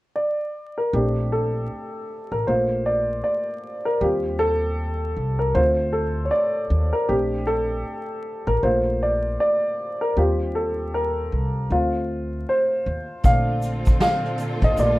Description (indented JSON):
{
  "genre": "lo-fi hip hop",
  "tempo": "78 BPM",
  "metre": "4/4",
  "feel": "swing 60% on 16ths",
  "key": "unclear",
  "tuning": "A4 = 443 Hz",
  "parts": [
    { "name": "dark upright piano", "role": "accompaniment", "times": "0.2-15.0 s", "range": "G3 to F5", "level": "-22 LUFS", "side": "equal", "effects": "cassette tape" },
    { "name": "upright bass", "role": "bass", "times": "0.9-15.0 s", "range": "A1 to Eb2", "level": "-25 LUFS", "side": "equal", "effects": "none" },
    { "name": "warm symphonic string section", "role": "sustained chords", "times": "13.2-15.0 s", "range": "Bb2 to A4", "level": "-28 LUFS", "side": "right 1 dB", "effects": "none" },
    { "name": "vintage brush drum kit", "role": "drums", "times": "13.2-15.0 s", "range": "hi-hat, kick drum, snare drum", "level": "-19 LUFS", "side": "equal", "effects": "none" },
    { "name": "egg shaker", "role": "percussion", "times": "13.2-15.0 s", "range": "none", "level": "-48 LUFS", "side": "right 2 dB", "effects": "none" }
  ],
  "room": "moderate studio reverb, RT60 0.5 s",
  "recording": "rough home demo mix, vinyl crackle",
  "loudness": "-20 LUFS",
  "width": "side -18 dB against mid",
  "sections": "0.9-15.0 A section",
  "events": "upright piano solo 0.9-15.0",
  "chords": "0.0 N.C.; 0.9 Bbmaj9; 4.0 Eb69; 5.5 Dm7; 7.1 Bbmaj9; 10.2 Eb69; 11.7 Dm7; 13.2 Bbmaj9",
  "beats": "0.16 | 0.93 1.70 2.47 3.24 | 4.01 4.78 5.55 6.32 | 7.09 7.86 8.63 9.39 | 10.16 10.93 11.70 12.47 | 13.24 14.01 14.78"
}